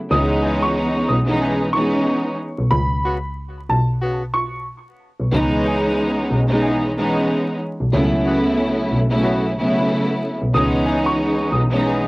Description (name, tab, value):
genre	hip hop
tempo	92 BPM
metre	4/4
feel	swing 60% on 16ths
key	C# minor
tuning	A4 = 440 Hz
part	warm upright piano	melody	0.1-4.6, 10.5-12.1 s	A5 to D#6	-23 LUFS	equal	high-pass filter, low-pass filter, cassette tape
part	rich studio string section	accompaniment	0.1-12.1 s	C#3 to E4	-18 LUFS	equal	cassette tape, high-pass filter, low-pass filter
part	rich double bass	bass	0.1-12.1 s	B1 to C#2	-22 LUFS	equal	tube saturation
part	mellow horn section	stabs	0.4-12.1 s	C#3 to G#4	-28 LUFS	left 1 dB	high-pass filter, low-pass filter, cassette tape, tape echo
room	light reverb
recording	home recording on cassette, vinyl crackle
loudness	-16 LUFS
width	side -24 dB against mid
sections	0.1-12.1 A section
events	break 2.7-5.3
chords	0.1 C#m9; 2.7 Bsus2; 5.3 C#m9; 7.9 A69; 10.5 C#m9